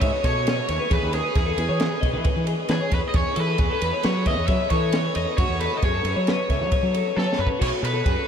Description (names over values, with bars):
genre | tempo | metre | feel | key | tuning
math rock and midwest emo | 134 BPM | 5/4 | straight | E major | A4 = 440 Hz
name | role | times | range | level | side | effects
cranked stack guitar | melody | 0.0-8.3 s | G#4 to E5 | -27 LUFS | right 1 dB | overdrive, lush chorus, ping-pong delay
twangy electric guitar | accompaniment | 0.0-0.9 s | none | barely audible | none | none
twelve-string electric guitar | arpeggios | 0.0-8.3 s | F#4 to E5 | -26 LUFS | left 3 dB | wide subtle chorus, ping-pong delay
fuzz fingered electric bass | bass | 0.0-8.1 s | B1 to F#3 | -26 LUFS | equal | overdrive
compact cocktail drum kit | drums | 0.0-8.2 s | crash cymbal, kick drum, ride cymbal, snare drum, splash cymbal | -25 LUFS | equal | none
room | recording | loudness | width
moderate huge ambient reverb, RT60 7.5 s | dreamy mix soaked in reverb | -20 LUFS | side -7 dB against mid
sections
0.0-8.3 A section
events
drum fill 7.2-7.6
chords
0.0 N.C.; 0.9 Emaj7; 3.1 Amaj9/E; 5.4 F#m7; 7.6 B7(no3)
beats
0.01 0.46 | 0.90 1.35 1.80 2.25 2.69 | 3.14 3.59 4.04 4.48 4.93 | 5.38 5.83 6.27 6.72 7.17 | 7.61 8.06